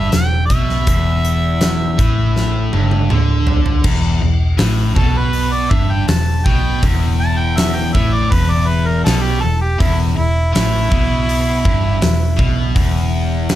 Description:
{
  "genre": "blues rock power trio and southern rock",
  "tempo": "81 BPM",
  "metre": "4/4",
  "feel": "straight",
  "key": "E minor",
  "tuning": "A4 = 440 Hz",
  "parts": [
    { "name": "clear harmonica", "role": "melody", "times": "0.0-12.7 s", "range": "E4 to A5", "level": "-22 LUFS", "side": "equal", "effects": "overdrive" },
    { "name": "biting overdriven guitar", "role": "riff", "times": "0.0-13.6 s", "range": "E2 to D3", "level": "-20 LUFS", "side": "left 1 dB", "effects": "none" },
    { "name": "vintage muted fingered electric bass", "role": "bass", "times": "0.0-13.6 s", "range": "E1 to D2", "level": "-17 LUFS", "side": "equal", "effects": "none" },
    { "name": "huge arena drum kit", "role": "drums", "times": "0.1-13.6 s", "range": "crash cymbal, hi-hat, kick drum, snare drum, toms", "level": "-18 LUFS", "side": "equal", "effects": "none" }
  ],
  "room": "little or no reverb",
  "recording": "none",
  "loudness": "-13 LUFS",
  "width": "side -13 dB against mid",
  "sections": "0.0-3.9 A section; 3.9-13.6 B section",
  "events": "drum fill 2.4-3.9; harmonica solo 3.9-13.6",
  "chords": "0.0 Em",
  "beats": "0.14 | 0.88 1.63 2.37 3.12 | 3.86 4.60 5.35 6.09 | 6.83 7.58 8.32 9.06 | 9.80 10.54 11.28 12.02 | 12.76 13.49"
}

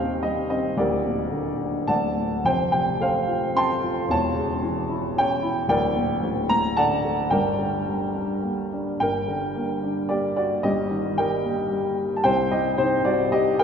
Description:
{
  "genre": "classical, lyrical solo piano",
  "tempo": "111 BPM",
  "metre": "3/4",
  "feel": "rubato",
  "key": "G minor, G harmonic minor from 9.0 s",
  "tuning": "A4 = 440 Hz",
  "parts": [
    { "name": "dark grand piano", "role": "solo", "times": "0.0-13.6 s", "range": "D1 to C6", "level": "-21 LUFS", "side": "equal", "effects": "none" }
  ],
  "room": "wet cathedral reverb, RT60 5.6 s",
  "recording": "recorded in a church or concert hall",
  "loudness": "-21 LUFS",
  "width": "side -7 dB against mid",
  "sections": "0.0-9.0 A section; 9.0-13.6 B section",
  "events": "none",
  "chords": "0.0 Cm/Eb; 0.8 Gm/D; 1.9 D; 2.4 Fadd9; 4.1 A/E; 5.7 Gm/D; 6.2 D; 7.3 Gm; 10.6 Eb/G; 12.2 Cm",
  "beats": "0.24 | 0.78 1.32 1.88 | 2.45 3.01 3.56 | 4.09 4.62 5.16 | 5.69 6.23 6.78 | 7.32 7.86 8.44 | 9.01 9.56 10.10 | 10.64 11.17 11.71 | 12.24 12.78 13.32"
}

